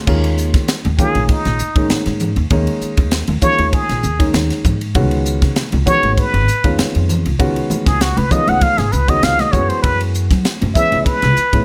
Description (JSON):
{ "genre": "electric jazz fusion", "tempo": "98 BPM", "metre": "4/4", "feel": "swing 53% on 16ths", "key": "Eb minor", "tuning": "A4 = 441 Hz", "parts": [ { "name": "dark grand piano", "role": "accompaniment", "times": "0.0-11.6 s", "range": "Eb3 to Gb4", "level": "-24 LUFS", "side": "equal", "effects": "none" }, { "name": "upright bass", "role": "bass", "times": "0.1-11.6 s", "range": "Ab1 to Gb3", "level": "-21 LUFS", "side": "equal", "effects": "none" }, { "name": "crisp fusion drum kit", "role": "drums", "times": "0.1-11.6 s", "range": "crash cymbal, hi-hat, kick drum, ride cymbal, snare drum", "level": "-21 LUFS", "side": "equal", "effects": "none" }, { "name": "congas", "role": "percussion", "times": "0.8-11.1 s", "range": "none", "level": "-26 LUFS", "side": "equal", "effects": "none" }, { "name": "trumpet with plunger mute", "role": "melody", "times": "1.0-11.6 s", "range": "Eb4 to Gb5", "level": "-19 LUFS", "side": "equal", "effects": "slapback echo" } ], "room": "light reverb", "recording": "none", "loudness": "-16 LUFS", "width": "mono", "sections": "0.1-11.6 A section", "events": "muted trumpet solo 0.1-11.6", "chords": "0.1 Eb9sus4; 5.0 Db9sus4; 9.5 Gb9sus4" }